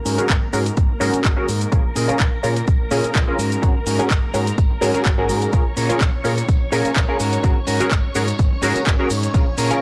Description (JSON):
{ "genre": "filtered disco house", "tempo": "126 BPM", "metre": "4/4", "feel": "swing 54% on 16ths", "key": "unclear", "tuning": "A4 = 439 Hz", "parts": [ { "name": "string machine, full ensemble", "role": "sustained chords", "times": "0.0-9.8 s", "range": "Bb4 to Db6", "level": "-32 LUFS", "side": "equal", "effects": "ensemble chorus, sidechain pumping, low-pass filter" }, { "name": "mellow electric guitar", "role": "riff", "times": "0.1-9.7 s", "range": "Db4 to Bb4", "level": "-27 LUFS", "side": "equal", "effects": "sidechain pumping, low-pass filter" }, { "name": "fuzz fingered electric bass", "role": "bass", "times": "0.1-9.7 s", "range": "Ab1 to Bb2", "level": "-26 LUFS", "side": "equal", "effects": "overdrive, tube saturation, sidechain pumping, low-pass filter" }, { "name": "house drum kit", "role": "drums", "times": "0.1-9.8 s", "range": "handclaps, hi-hat, shaker", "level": "-28 LUFS", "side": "equal", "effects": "overdrive, sidechain pumping on hats, sidechain pumping on cymbals, sidechain pumping on perc" }, { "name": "tambourine", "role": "percussion", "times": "0.1-9.8 s", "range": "none", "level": "-42 LUFS", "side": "equal", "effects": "none" }, { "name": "funky polysynth comp", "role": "accompaniment", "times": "0.2-9.8 s", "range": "Db4 to Bb4", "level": "-24 LUFS", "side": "equal", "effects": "chorus, phaser, sidechain pumping, low-pass filter" }, { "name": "electronic kick drum", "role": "drums", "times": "0.3-9.4 s", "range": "none", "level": "-20 LUFS", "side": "equal", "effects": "overdrive" } ], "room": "little or no reverb", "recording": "dry, gritty hardware recording, transformer saturation, lossy compression artefacts", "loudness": "-19 LUFS", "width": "mono", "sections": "0.0-9.8 A section", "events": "filter sweep 0.0-9.8", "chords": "0.0 Ab9sus4; 1.7 Bbm7; 3.4 Ab9sus4; 5.5 Bbm7; 7.2 Ab9sus4" }